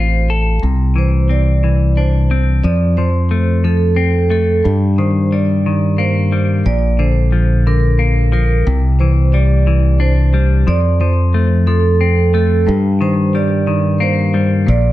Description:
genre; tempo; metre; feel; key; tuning
rock; 60 BPM (dotted quarters); 6/8; straight; unclear; A4 = 440 Hz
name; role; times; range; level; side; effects
semi-hollow electric guitar; arpeggios; 0.0-14.9 s; G2 to A4; -18 LUFS; left 4 dB; slapback echo
vibraphone with medium hard mallets; arpeggios; 0.0-14.9 s; A4 to D5; -21 LUFS; right 5 dB; slapback echo
modern bright fingered electric bass; bass; 0.0-14.9 s; A1 to G2; -13 LUFS; equal; none
room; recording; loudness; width
light reverb, small room ambience; none; -12 LUFS; side -15 dB against mid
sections
0.6-14.9 A section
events
none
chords
0.0 F/A; 0.6 Cadd9; 2.6 F; 4.7 Eb/G; 6.7 Bb; 8.7 Cadd9; 10.7 F; 12.7 Eb/G

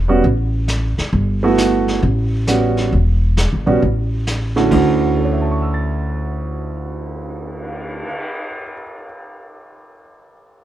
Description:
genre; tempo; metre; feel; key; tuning
jazz, small-group swing and bop; 134 BPM; 4/4; swing 67% on 8ths; D major; A4 = 440 Hz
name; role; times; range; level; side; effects
upright bass; bass; 0.0-8.0 s; E1 to D2; -18 LUFS; equal; none
warm concert grand piano; accompaniment; 0.1-9.0 s; D2 to A6; -17 LUFS; right 3 dB; none
vintage brush drum kit; drums; 0.2-8.2 s; brushed snare drum, crash cymbal, cymbal swell, hi-hat, kick drum, snare drum; -27 LUFS; equal; none
room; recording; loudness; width
little or no reverb; dark, warm production; -15 LUFS; side -12 dB against mid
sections
0.0-4.7 A section; 4.7-8.3 B section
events
none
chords
0.2 N.C.; 1.1 Gmaj13; 2.0 A13; 2.9 Emadd9; 3.8 A6; 4.7 Dmaj9

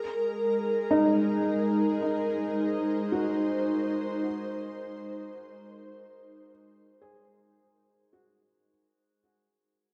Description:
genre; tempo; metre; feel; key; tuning
ambient; 54 BPM; 4/4; straight; unclear; A4 = 437 Hz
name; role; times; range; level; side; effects
ethereal airy pad; sustained chords; 0.0-8.7 s; Ab3 to C5; -31 LUFS; equal; ensemble chorus, built-in reverb
felt-muted upright piano; arpeggios; 0.9-9.2 s; Eb4 to Ab4; -32 LUFS; equal; diffuse ambient delay
room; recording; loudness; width
wet plate reverb, RT60 2.2 s; dreamy mix soaked in reverb, cassette tape; -28 LUFS; mono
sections
0.0-8.7 A section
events
fade-out 0.0-8.7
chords
0.0 Ab7

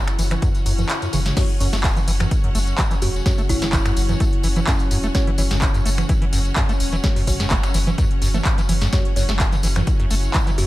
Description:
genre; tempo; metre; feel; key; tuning
acid house; 127 BPM; 4/4; swing 53% on 16ths; unclear; A4 = 441 Hz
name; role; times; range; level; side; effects
warbly tape-like pad; sustained chords; 0.0-10.7 s; C#3 to E4; -31 LUFS; left 2 dB; chorus, built-in reverb, sidechain pumping
bright studio string section; texture; 0.0-10.7 s; C#4 to F#5; -33 LUFS; equal; sidechain pumping
booming analog drum machine; drums; 0.1-10.7 s; congas, crash cymbal, finger snaps, handclaps, hi-hat, snare drum; -25 LUFS; right 1 dB; overdrive
tambourine; percussion; 0.1-10.7 s; none; -33 LUFS; left 3 dB; none
deep acid bass; riff; 0.2-10.6 s; F#2 to A3; -26 LUFS; equal; overdrive
warm sub bass; bass; 0.2-10.7 s; E1 to F#1; -23 LUFS; equal; sidechain pumping
electronic kick drum; drums; 0.4-10.4 s; none; -20 LUFS; equal; none
deep mellow chord stab; stabs; 1.4-9.3 s; C#4 to C#5; -32 LUFS; equal; chorus, ping-pong delay
buzzing kalimba; melody; 3.0-5.0, 10.6-10.7 s; C#4 to F#4; -29 LUFS; equal; digital delay
room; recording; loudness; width
little or no reverb; none; -17 LUFS; side -16 dB against mid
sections
0.0-1.4 A section; 1.4-10.7 B section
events
kick drops out 0.9-1.4; drop 1.4-10.7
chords
0.0 F#5

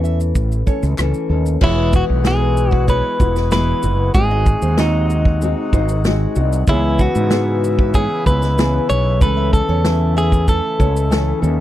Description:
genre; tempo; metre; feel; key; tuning
acoustic pop; 95 BPM; 4/4; straight; E major; A4 = 441 Hz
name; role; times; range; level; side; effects
nylon-string guitar; accompaniment; 0.0-11.6 s; C#3 to A4; -22 LUFS; left 4 dB; none
fingerpicked steel-string acoustic guitar; arpeggios; 0.0-10.9 s; B4 to E5; -30 LUFS; right 10 dB; none
fretless electric bass; bass; 0.0-11.6 s; E1 to G#2; -17 LUFS; equal; analog chorus
natural country drum kit; drums; 0.0-11.6 s; crash cymbal, kick drum, rim click, shaker, snare drum; -17 LUFS; equal; none
group handclap; percussion; 1.0-1.1 s; none; -32 LUFS; left 4 dB; none
direct-recorded clean electric guitar; melody; 1.6-11.4 s; D#4 to C#5; -20 LUFS; equal; warbly pitch drift
hand-pumped harmonium; sustained chords; 1.6-11.6 s; B#2 to F#4; -31 LUFS; left 2 dB; none
room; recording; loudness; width
little or no reverb; dry, close 1970s-style studio recording; -14 LUFS; side -13 dB against mid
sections
0.0-1.6 A section; 1.6-11.6 B section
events
none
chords
0.0 A; 1.6 Eadd9; 4.2 G#7; 6.7 C#m7; 9.2 A/C#

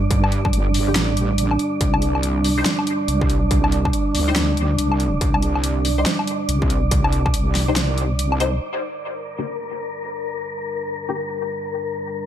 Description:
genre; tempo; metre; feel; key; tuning
deep dubstep; 141 BPM; 4/4; swing 62% on 16ths, half-time; G minor; A4 = 441 Hz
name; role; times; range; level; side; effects
dark analog pad; sustained chords; 0.0-12.3 s; G3 to D4; -25 LUFS; right 2 dB; lush chorus
wobble bass; bass; 0.0-8.6 s; G1 to G2; -21 LUFS; equal; chorus
wind-like tuned noise texture; texture; 0.0-12.3 s; Bb4 to D5; -27 LUFS; right 1 dB; built-in reverb
dubstep drum kit; drums; 0.1-8.5 s; hi-hat, snare drum, woodblock; -24 LUFS; left 2 dB; low-pass filter on hats, small room ambience, low-pass filter on perc, low-pass filter on snare
electronic kick drum; drums; 0.1-7.3 s; none; -21 LUFS; equal; distortion, small room ambience
filtered dub chord stab; stabs; 0.9-11.2 s; D3 to C5; -28 LUFS; left 3 dB; phaser, ensemble chorus, cassette tape, dub echo
room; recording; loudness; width
light reverb, digital ambience; none; -18 LUFS; side -10 dB against mid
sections
0.0-8.6 A section; 8.6-12.3 B section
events
filter sweep on synth stab 8.6-12.3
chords
0.0 G5; 1.8 Cm; 8.6 Gm

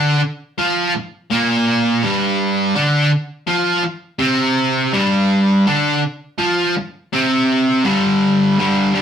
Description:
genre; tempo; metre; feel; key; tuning
rock; 82 BPM; 4/4; straight; unclear; A4 = 440 Hz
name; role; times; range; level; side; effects
distorted electric guitar; solo; 0.0-9.0 s; G2 to F4; -14 LUFS; equal; distortion
room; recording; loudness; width
wet studio reverb, RT60 0.6 s; rough rehearsal-room recording, warm saturation; -15 LUFS; side -8 dB against mid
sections
0.0-7.8 A section; 7.8-9.0 B section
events
none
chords
0.0 G5

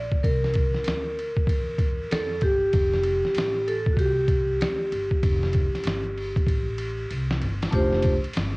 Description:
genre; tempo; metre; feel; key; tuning
hip hop, jazz-hop; 96 BPM; 4/4; swing 62% on 16ths; F major; A4 = 440 Hz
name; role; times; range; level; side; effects
vibraphone with medium hard mallets; accompaniment; 0.0-8.1 s; A3 to D5; -26 LUFS; equal; none
upright bass; bass; 0.0-8.6 s; F1 to F2; -29 LUFS; equal; none
trip hop sampler-style drum kit; drums; 0.1-8.5 s; hi-hat, kick drum, ride cymbal, snare drum; -25 LUFS; equal; vintage 12-bit sampler grit, cassette tape
room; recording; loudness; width
light reverb; home recording on cassette; -22 LUFS; side -27 dB against mid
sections
0.0-7.7 A section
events
vibraphone solo 0.0-7.7; drum fill 6.5-7.7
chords
0.2 C7; 2.7 Fadd9; 7.7 F69

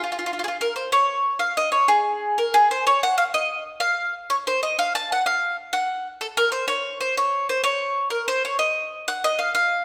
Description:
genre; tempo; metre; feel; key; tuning
italian folk; 125 BPM (dotted quarters); 6/8; straight; unclear; A4 = 441 Hz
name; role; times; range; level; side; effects
bowl-back mandolin; solo; 0.0-9.8 s; F4 to A5; -22 LUFS; equal; none
room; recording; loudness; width
wet recital hall reverb, RT60 1.5 s; none; -22 LUFS; mono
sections
0.9-9.8 A section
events
none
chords
none

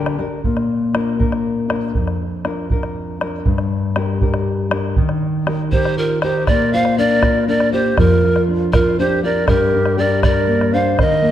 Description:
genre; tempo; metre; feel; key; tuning
andean folk, Andean ensemble; 80 BPM (dotted quarters); 6/8; straight; unclear; A4 = 439 Hz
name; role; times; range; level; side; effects
nylon-string guitar; accompaniment; 0.0-11.3 s; F2 to Bb4; -18 LUFS; left 2 dB; none
bombo; percussion; 0.1-11.1 s; none; -21 LUFS; right 1 dB; none
breathy mellow polished pan flute; melody; 5.7-11.3 s; Bb4 to F5; -18 LUFS; equal; none
breathy reedy large quena; second line; 5.7-11.3 s; F4 to C5; -22 LUFS; right 5 dB; none
room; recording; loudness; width
moderate scoring stage reverb, RT60 1.9 s; dark, warm production; -15 LUFS; side -11 dB against mid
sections
0.4-6.5 A section; 6.5-11.3 B section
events
none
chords
0.4 Bb; 3.5 Gm; 5.0 Eb; 6.5 Bb; 9.5 Gm

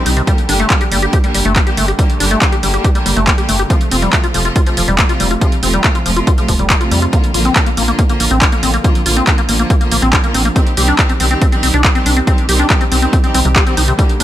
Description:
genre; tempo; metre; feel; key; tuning
uplifting trance; 140 BPM; 4/4; straight; unclear; A4 = 438 Hz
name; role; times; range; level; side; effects
clear symphonic string section; sustained chords; 0.0-14.2 s; C3 to G4; -19 LUFS; right 1 dB; sidechain pumping
liquid acid bass; arpeggios; 0.0-14.2 s; C3 to G4; -18 LUFS; left 2 dB; chorus, sidechain pumping, ping-pong delay
tight sequencer bass; bass; 0.1-14.2 s; F1 to F2; -17 LUFS; equal; sidechain pumping
punchy analog drum machine; drums; 0.1-14.2 s; handclaps, hi-hat; -17 LUFS; right 1 dB; none
electronic kick drum; drums; 0.3-14.1 s; none; -14 LUFS; equal; none
room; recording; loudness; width
digital ambience; none; -10 LUFS; side -12 dB against mid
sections
0.0-14.2 A section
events
none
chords
0.3 Gm; 3.7 F; 7.1 Bb; 10.6 Cm

